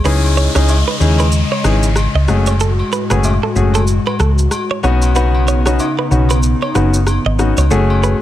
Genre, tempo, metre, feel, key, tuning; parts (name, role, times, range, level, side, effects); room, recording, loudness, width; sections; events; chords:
afrobeats; 94 BPM; 4/4; swing 58% on 16ths; C# minor; A4 = 439 Hz
clear baby grand piano; accompaniment; 0.0-8.2 s; A3 to G#4; -19 LUFS; left 5 dB
airy breathy pad; sustained chords; 0.0-8.2 s; A2 to D#5; -21 LUFS; left 1 dB; chorus
hollow-body short-scale fingered electric bass; bass; 0.0-8.1 s; F#1 to D#2; -14 LUFS; equal
electronic shaker and rim click; drums; 0.0-8.2 s; -24 LUFS; equal
downlifter; sound effects; 0.0-5.2 s; -26 LUFS; left 1 dB
direct-recorded clean electric guitar; riff; 0.1-8.1 s; A4 to D#5; -22 LUFS; right 7 dB; tape echo
agogo bells and woodblock; percussion; 0.2-8.0 s; -27 LUFS; left 4 dB
little or no reverb; -12 LUFS; side -13 dB against mid
0.0-8.2 A section
0.0 C#madd9; 2.3 F#madd9; 4.8 Badd9; 7.7 F#madd9